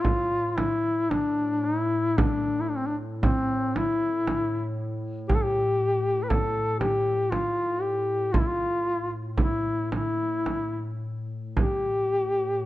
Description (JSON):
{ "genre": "caucasian folk, Caucasian lament", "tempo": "58 BPM", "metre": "3/4", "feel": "uneven beats, rubato", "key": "A minor", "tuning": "A4 = 440 Hz", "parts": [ { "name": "warm duduk", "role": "melody", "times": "0.0-12.7 s", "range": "C4 to B4", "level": "-25 LUFS", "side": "left 1 dB", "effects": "none" }, { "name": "warbly tape-like pad", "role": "drone", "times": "0.0-12.7 s", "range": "A2", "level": "-33 LUFS", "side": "left 1 dB", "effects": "chorus, built-in reverb" }, { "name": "frame drum", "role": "percussion", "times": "0.0-11.8 s", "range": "none", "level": "-27 LUFS", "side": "right 2 dB", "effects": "none" } ], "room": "light reverb", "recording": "dark, warm production, nothing above 10.5 kHz", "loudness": "-24 LUFS", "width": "side -16 dB against mid", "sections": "0.0-12.7 A section", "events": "none", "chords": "none", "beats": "0.04 1.11 | 2.17 3.23 4.27 | 5.29 6.30 7.31 | 8.34 9.38 10.45 | 11.55 12.65" }